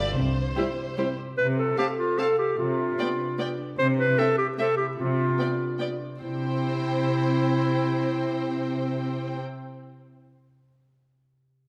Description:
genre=cinematic, playful, whimsical film cue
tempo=149 BPM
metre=3/4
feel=straight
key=C major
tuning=A4 = 444 Hz
part: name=rich studio violin section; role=melody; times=0.0-9.4 s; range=C5 to A5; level=-39 LUFS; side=equal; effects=none
part: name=concert harp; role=arpeggios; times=0.0-10.2 s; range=G2 to G5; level=-36 LUFS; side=equal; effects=none
part: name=rich studio double bass section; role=bass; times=0.0-0.5 s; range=C2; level=-34 LUFS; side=equal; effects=none
part: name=warm studio cello section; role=bass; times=0.0-9.4 s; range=C3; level=-31 LUFS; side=equal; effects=none
part: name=warm studio violin section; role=second line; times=0.6-9.4 s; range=G4 to F5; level=-38 LUFS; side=equal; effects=none
part: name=warm studio viola section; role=accompaniment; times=0.6-9.4 s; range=G3 to E4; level=-36 LUFS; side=equal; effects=none
part: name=mellow French horn section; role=sustained chords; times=0.6-1.1 s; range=C4 to E4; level=-39 LUFS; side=equal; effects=none
part: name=clear clarinet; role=second line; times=1.4-9.4 s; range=E4 to C5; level=-28 LUFS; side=equal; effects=none
room=moderate scoring stage reverb, RT60 2.0 s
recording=none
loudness=-26 LUFS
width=mono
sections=0.0-1.4 A section; 1.4-6.2 B section; 6.2-8.6 C section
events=none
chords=0.2 C; 1.4 F/C; 2.6 G7/C; 3.8 C; 5.0 G7/C; 6.2 C

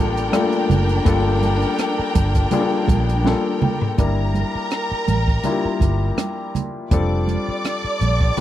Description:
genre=lush 1970s-style soul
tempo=82 BPM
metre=4/4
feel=swing 54% on 16ths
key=G dorian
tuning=A4 = 440 Hz
part: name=warm studio string section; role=second line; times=0.0-8.4 s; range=D4 to D6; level=-25 LUFS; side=equal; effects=none
part: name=warm baby grand piano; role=accompaniment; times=0.0-8.4 s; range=G3 to Bb4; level=-22 LUFS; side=left 4 dB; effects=none
part: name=vintage muted fingered electric bass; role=bass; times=0.0-8.3 s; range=F1 to Bb1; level=-20 LUFS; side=equal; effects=none
part: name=vibraphone with medium hard mallets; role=texture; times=0.0-7.2 s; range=F5 to C6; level=-36 LUFS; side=right 3 dB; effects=none
part: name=compact cocktail drum kit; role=drums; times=0.2-8.4 s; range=hi-hat, kick drum, rim click, snare drum, toms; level=-21 LUFS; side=equal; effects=none
part: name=congas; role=percussion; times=0.3-8.4 s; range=none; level=-26 LUFS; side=right 7 dB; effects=none
room=little or no reverb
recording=dry, close 1970s-style studio recording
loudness=-17 LUFS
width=side -12 dB against mid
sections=0.0-4.0 A section; 4.0-8.4 B section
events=drum fill 3.2-4.0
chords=0.0 Gm9; 4.0 Gm6; 6.9 F6

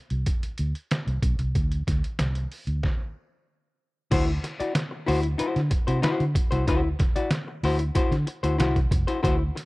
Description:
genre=funk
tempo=94 BPM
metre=4/4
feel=straight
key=D mixolydian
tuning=A4 = 440 Hz
part: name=fingered electric bass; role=bass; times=0.1-9.5 s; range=F1 to D3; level=-25 LUFS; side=equal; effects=none
part: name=trip hop sampler-style drum kit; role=drums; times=0.1-9.7 s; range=crash cymbal, hi-hat, kick drum, snare drum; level=-26 LUFS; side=equal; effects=none
part: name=hollow-body jazz guitar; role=accompaniment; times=4.1-9.6 s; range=E4 to D5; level=-27 LUFS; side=left 3 dB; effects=none
room=digital ambience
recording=dry, close 1970s-style studio recording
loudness=-23 LUFS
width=side -21 dB against mid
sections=0.0-4.1 A section; 4.1-9.7 B section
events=stop 2.8-4.1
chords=0.0 N.C.; 4.1 D9

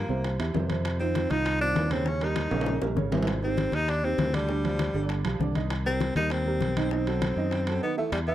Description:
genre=Afro-Cuban jazz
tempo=198 BPM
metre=4/4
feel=straight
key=C minor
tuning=A4 = 440 Hz
part: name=breathy tenor saxophone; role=melody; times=0.0-8.3 s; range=G3 to Eb4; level=-30 LUFS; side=left 2 dB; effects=none
part: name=warm upright piano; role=accompaniment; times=0.0-8.3 s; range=C3 to E6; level=-31 LUFS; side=right 6 dB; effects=none
part: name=fingered electric bass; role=bass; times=0.0-8.3 s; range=G1 to F#2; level=-29 LUFS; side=equal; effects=none
part: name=bongos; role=percussion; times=0.1-8.3 s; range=none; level=-38 LUFS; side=left 10 dB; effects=none
part: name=congas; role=percussion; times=0.1-8.3 s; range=none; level=-33 LUFS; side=left 3 dB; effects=none
part: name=timbales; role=percussion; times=0.2-8.3 s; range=none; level=-35 LUFS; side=right 2 dB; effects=none
room=small room ambience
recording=dry, close 1970s-style studio recording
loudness=-24 LUFS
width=side -12 dB against mid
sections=0.0-8.1 A section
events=drum fill 2.5-3.3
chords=0.2 C; 0.8 F5; 2.1 Eb7; 3.3 Abmaj7; 4.5 G7sus4; 5.1 G7; 5.7 Cm7; 6.9 B7b9

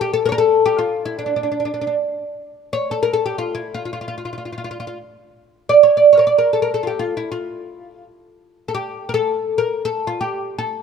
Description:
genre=Arabic maqam ensemble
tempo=free time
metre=none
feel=none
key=unclear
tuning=A4 = 440 Hz
part: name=oud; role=solo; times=0.0-10.8 s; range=D4 to D5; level=-16 LUFS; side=right 1 dB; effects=none
room=moderate concert hall reverb, RT60 2.0 s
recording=close, detailed microphones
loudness=-16 LUFS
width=side -6 dB against mid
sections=0.0-2.5 A section; 2.5-10.8 A section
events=none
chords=none

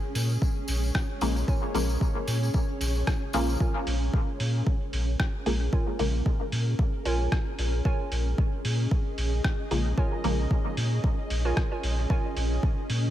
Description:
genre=dub techno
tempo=113 BPM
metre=4/4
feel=swing 56% on 16ths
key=Bb minor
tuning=A4 = 439 Hz
part: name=granular cloud pad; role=sustained chords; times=0.0-13.1 s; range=Db4 to Eb5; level=-35 LUFS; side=equal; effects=built-in reverb, sidechain pumping
part: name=pure sine sub bass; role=bass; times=0.2-13.1 s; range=Bb1 to Bb2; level=-26 LUFS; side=equal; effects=sidechain pumping
part: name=lo-fi sampler-style drum kit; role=drums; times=0.2-13.0 s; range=hi-hat, rim click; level=-35 LUFS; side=right 1 dB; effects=none
part: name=tambourine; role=percussion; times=0.2-3.6 s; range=none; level=-40 LUFS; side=left 2 dB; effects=none
part: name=electronic kick drum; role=drums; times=0.4-12.7 s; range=none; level=-26 LUFS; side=equal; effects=none
part: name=filtered dub chord stab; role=stabs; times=1.2-6.2, 9.7-10.5 s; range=Db3 to Bb3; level=-32 LUFS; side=left 1 dB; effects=chorus, phaser, sidechain pumping, dub echo
part: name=warbly dusty pluck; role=riff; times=1.5-12.2 s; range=F4 to Ab5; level=-37 LUFS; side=right 3 dB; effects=chorus, sidechain pumping, dub echo
room=little or no reverb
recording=none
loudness=-25 LUFS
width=side -12 dB against mid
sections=0.0-3.6 A section; 3.6-13.1 A section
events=none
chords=0.0 Bbm7

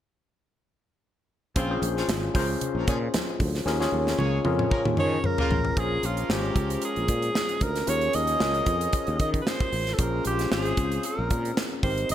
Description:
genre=polished 1980s jazz-funk pop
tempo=114 BPM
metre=4/4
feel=swing 54% on 16ths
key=Bb dorian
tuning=A4 = 439 Hz
part: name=warm horn section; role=second line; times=1.6-12.1 s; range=Db3 to Db5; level=-36 LUFS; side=right 1 dB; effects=ping-pong delay
part: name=overdriven tine electric piano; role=accompaniment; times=1.6-12.1 s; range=Ab3 to Db5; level=-29 LUFS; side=left 3 dB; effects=wide subtle chorus
part: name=sustaining fretless electric bass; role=bass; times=1.6-12.1 s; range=Ab1 to Eb3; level=-29 LUFS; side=equal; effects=none
part: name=modern studio drum kit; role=drums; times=1.6-12.1 s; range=hi-hat, kick drum, snare drum, toms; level=-28 LUFS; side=equal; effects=gated reverb
part: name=congas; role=percussion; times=1.8-5.6 s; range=none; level=-38 LUFS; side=right 1 dB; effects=none
part: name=bright alto saxophone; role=melody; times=5.0-12.1 s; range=F4 to Eb5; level=-28 LUFS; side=right 2 dB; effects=none
room=moderate plate reverb, RT60 1.3 s, studio ambience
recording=bright 1980s-style digital production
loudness=-23 LUFS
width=side -11 dB against mid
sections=1.6-5.8 A section; 5.8-12.1 B section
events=drum fill 3.7-5.8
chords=1.6 Bbm9; 3.7 Eb9sus4; 5.8 Bbm9; 7.9 Eb9sus4; 10.0 Bbm9

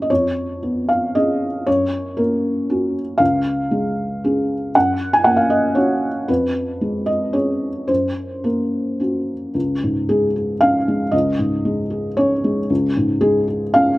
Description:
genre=neoclassical minimalist piano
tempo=116 BPM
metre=3/4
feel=rubato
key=unclear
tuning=A4 = 440 Hz
part: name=felt-muted upright piano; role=solo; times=0.0-14.0 s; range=Db2 to Ab5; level=-16 LUFS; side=equal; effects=slapback echo
room=little or no reverb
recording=recorded outdoors, with no room sound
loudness=-17 LUFS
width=side -18 dB against mid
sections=0.0-9.5 A section; 9.5-14.0 B section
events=none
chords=0.1 Db7/F; 1.7 Gb; 3.2 Db; 4.7 Gb; 6.3 Db7/F; 7.9 Gb; 9.5 Absus4/Db

